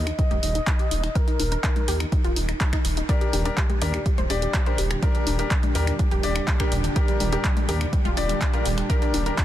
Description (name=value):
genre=progressive house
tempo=124 BPM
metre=4/4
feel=straight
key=unclear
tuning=A4 = 443 Hz
part: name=warm velvety synth lead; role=melody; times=0.0-2.8 s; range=Bb4 to Eb5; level=-33 LUFS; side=equal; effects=chorus, vintage 12-bit sampler grit, tape echo
part: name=wide unison pluck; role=arpeggios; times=0.0-9.4 s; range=G3 to D5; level=-31 LUFS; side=right 1 dB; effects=cassette tape, sidechain pumping, tape echo
part: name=dark detuned saw bass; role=bass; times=0.0-9.3 s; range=Eb1 to Eb2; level=-26 LUFS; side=equal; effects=sidechain pumping
part: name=deep house drum kit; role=drums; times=0.1-9.4 s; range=finger snaps, handclaps, hi-hat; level=-30 LUFS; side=equal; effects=overdrive
part: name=congas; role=percussion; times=0.1-9.4 s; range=none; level=-36 LUFS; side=left 6 dB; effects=none
part: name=electronic kick drum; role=drums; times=0.2-9.4 s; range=none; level=-23 LUFS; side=equal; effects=none
part: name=warm analog pad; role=sustained chords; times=3.1-9.4 s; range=Bb2 to G4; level=-32 LUFS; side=right 3 dB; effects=chorus, sidechain pumping
part: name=clear grand piano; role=stabs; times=3.1-9.4 s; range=D4 to D5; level=-29 LUFS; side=left 5 dB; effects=sidechain pumping, tape echo
room=digital ambience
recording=dense, heavily limited modern master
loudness=-20 LUFS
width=side -12 dB against mid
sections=0.0-9.4 A section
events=filter sweep on synth pluck 0.0-9.4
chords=0.0 Eb5; 3.1 Gm/Eb